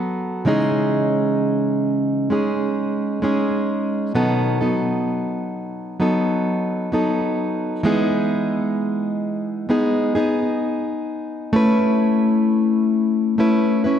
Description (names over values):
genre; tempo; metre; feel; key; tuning
pop; 65 BPM; 4/4; straight; E major; A4 = 440 Hz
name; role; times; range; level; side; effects
fingerpicked plugged-in steel-string acoustic guitar; solo; 0.0-14.0 s; B2 to B4; -18 LUFS; equal; none
room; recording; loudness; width
wet concert hall reverb, RT60 2.1 s; dark, warm production, nothing above 11.0 kHz; -18 LUFS; side -9 dB against mid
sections
0.0-7.9 A section; 7.9-14.0 B section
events
none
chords
0.5 C#madd9; 4.2 B7; 7.9 Emaj7; 11.5 Aadd9